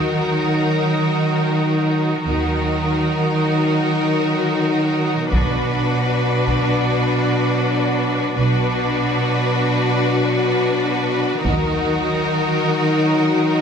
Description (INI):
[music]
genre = cinematic, epic orchestral film score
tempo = free time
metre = none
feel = none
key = unclear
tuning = A4 = 440 Hz
[part]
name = rich symphonic violin section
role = melody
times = 0.0-13.6 s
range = A#4 to B4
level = -24 LUFS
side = left 4 dB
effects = none
[part]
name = rich symphonic violin section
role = second line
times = 0.0-13.6 s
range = F#4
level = -24 LUFS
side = left 2 dB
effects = none
[part]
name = rich symphonic viola section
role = accompaniment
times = 0.0-13.6 s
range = D4 to D#4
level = -24 LUFS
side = right 2 dB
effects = none
[part]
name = mellow French horn section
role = sustained chords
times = 0.0-13.6 s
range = F#3 to D#4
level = -24 LUFS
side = left 3 dB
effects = none
[part]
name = rich symphonic cello section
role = bass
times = 0.0-13.6 s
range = B2 to D#3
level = -22 LUFS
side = right 3 dB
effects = none
[part]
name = clear symphonic double bass section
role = bass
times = 2.3-12.2 s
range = B1 to D#2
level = -24 LUFS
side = right 2 dB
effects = none
[part]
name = taiko ensemble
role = drums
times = 5.3-6.8, 11.4-12.9 s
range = none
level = -25 LUFS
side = equal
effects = none
[sound]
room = wet concert hall reverb, RT60 2.2 s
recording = none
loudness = -16 LUFS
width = side -7 dB against mid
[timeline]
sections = 0.0-13.6 A section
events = build-up 0.0-13.6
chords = 0.0 D#m; 5.3 Bm; 11.4 D#m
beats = free time